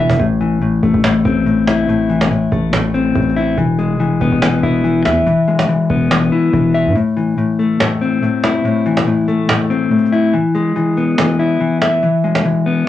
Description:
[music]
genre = hip hop, trap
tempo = 142 BPM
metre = 4/4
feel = half-time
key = A harmonic minor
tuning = A4 = 440 Hz
[part]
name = mellow electric guitar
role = accompaniment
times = 0.0-12.9 s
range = A2 to E5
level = -13 LUFS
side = left 3 dB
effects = low-pass filter, cassette tape
[part]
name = hard-hitting 808-style bass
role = bass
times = 0.0-7.0 s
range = E1 to G#2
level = -20 LUFS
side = right 2 dB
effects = none
[part]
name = cajon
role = drums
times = 0.1-12.5 s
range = none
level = -19 LUFS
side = right 2 dB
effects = vintage 12-bit sampler grit, cassette tape
[sound]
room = moderate booth ambience, RT60 0.2 s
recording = home recording on cassette, small room ambience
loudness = -12 LUFS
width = side -12 dB against mid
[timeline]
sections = 0.0-12.9 A section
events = break 0.0; drum fill 0.0; kick muted 7.0-12.9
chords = 0.2 Am; 3.6 E; 7.0 Am; 10.3 E

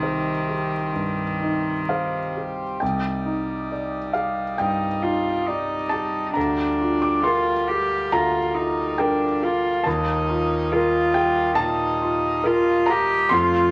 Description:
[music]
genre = neoclassical piano and strings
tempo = 68 BPM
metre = 4/4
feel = rubato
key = C dorian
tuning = A4 = 441 Hz
[part]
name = warm cello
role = second line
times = 0.0-13.7 s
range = Eb3 to G4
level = -25 LUFS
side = equal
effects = none
[part]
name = warm concert grand piano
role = accompaniment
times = 0.0-13.7 s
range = C2 to D6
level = -26 LUFS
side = equal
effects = none
[part]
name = pedal harmonium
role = sustained chords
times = 0.0-13.7 s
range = G3 to Eb5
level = -34 LUFS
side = equal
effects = none
[sound]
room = wet studio reverb, RT60 0.5 s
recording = vinyl crackle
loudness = -23 LUFS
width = mono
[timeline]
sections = 0.0-2.8 A section; 2.8-13.7 A section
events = none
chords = 0.0 Cm; 2.8 Cmadd9; 6.4 Bb6/D; 9.9 Ebadd9

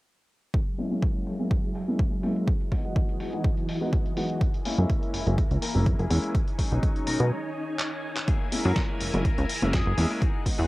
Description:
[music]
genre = filtered disco house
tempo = 124 BPM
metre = 4/4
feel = swing 53% on 16ths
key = F# mixolydian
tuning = A4 = 440 Hz
[part]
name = string machine, full ensemble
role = sustained chords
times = 0.5-10.7 s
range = E3 to A#5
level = -33 LUFS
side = equal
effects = ensemble chorus, sidechain pumping, low-pass filter, cassette tape
[part]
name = dusty soul sampler-style drum kit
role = drums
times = 0.5-10.6 s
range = handclaps, hi-hat, snare drum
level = -34 LUFS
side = equal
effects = sidechain pumping on hats, low-pass filter on hats, small room ambience, cassette tape, low-pass filter on snare
[part]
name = electronic kick drum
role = drums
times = 0.5-10.6 s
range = none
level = -26 LUFS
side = equal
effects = overdrive, small room ambience, cassette tape
[part]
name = clear baby grand piano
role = accompaniment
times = 0.8-10.7 s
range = F#3 to F#4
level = -31 LUFS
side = equal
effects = phaser, sidechain pumping, low-pass filter, cassette tape
[part]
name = clean electric guitar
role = riff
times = 4.7-10.7 s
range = A#3 to A#4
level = -38 LUFS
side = left 6 dB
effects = sidechain pumping, low-pass filter, cassette tape
[part]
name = plucky analog bass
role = bass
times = 4.8-10.7 s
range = F#1 to B2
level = -24 LUFS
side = equal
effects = tube saturation, sidechain pumping, low-pass filter
[part]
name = warm trumpet section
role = melody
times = 8.7-10.1 s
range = G#4 to A#4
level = -36 LUFS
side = left 2 dB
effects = sidechain pumping, low-pass filter, analog delay
[sound]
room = light reverb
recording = home recording on cassette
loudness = -24 LUFS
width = side -20 dB against mid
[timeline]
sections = 0.5-8.3 A section; 8.3-10.7 B section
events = filter sweep on drum 0.5-8.3; filter sweep 0.5-8.3; break 7.3-8.3; drum fill 7.8-8.3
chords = 0.5 F#9; 2.5 Emaj9; 4.4 F#9; 6.3 B69; 8.3 F#9

